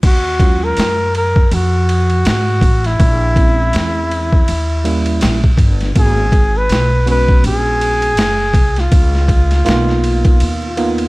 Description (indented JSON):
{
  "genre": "hip hop, jazz-hop",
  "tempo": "81 BPM",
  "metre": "4/4",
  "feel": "swing 58% on 16ths",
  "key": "Eb minor",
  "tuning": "A4 = 440 Hz",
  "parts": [
    { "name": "upright bass", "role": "bass", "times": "0.0-11.1 s", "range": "Gb1 to Ab2", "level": "-16 LUFS", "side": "equal", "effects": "none" },
    { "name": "boom bap sampler-style drum kit", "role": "drums", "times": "0.0-11.1 s", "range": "crash cymbal, hi-hat, kick drum, ride cymbal, snare drum", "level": "-15 LUFS", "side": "equal", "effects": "overdrive" },
    { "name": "breathy flugelhorn", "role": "melody", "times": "0.1-11.1 s", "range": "Fb4 to Cb5", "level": "-18 LUFS", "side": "equal", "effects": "none" },
    { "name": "tine electric piano", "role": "accompaniment", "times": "0.4-11.1 s", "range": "Gb3 to Gb4", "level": "-20 LUFS", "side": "right 2 dB", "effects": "none" }
  ],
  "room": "digital ambience",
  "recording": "vinyl crackle",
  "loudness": "-11 LUFS",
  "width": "side -22 dB against mid",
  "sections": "0.0-11.1 A section",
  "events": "none",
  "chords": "0.0 Ebm11; 3.0 Bbm7b5; 4.5 Eb7b9; 6.0 Abm11; 8.9 Db13"
}